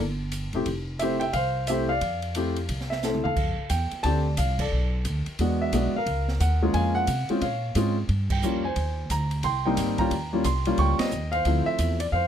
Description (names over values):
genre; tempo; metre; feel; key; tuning
jazz piano trio; 178 BPM; 4/4; swing 63% on 8ths; F major; A4 = 439 Hz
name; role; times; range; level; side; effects
upright bass; bass; 0.0-12.3 s; E1 to C3; -27 LUFS; equal; none
open jazz drum kit; drums; 0.3-12.2 s; crash cymbal, hi-hat, kick drum, ride cymbal, snare drum, toms; -34 LUFS; right 1 dB; none
warm baby grand piano; melody; 0.5-12.3 s; F3 to Db6; -26 LUFS; equal; none
room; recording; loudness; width
little or no reverb; close, detailed microphones; -23 LUFS; side -9 dB against mid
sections
0.0-3.4 A section; 3.4-12.3 B section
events
drum fill 3.0-3.4; band accent 4.6, 8.3, 11.0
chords
0.0 C (rootless); 0.7 Fmaj9; 3.4 F69; 4.7 Bm7; 5.4 E9; 6.1 Gbmaj7; 7.4 Bbm7; 8.1 Fsus2; 8.8 Abmaj7; 10.1 Eb9; 11.5 Dm7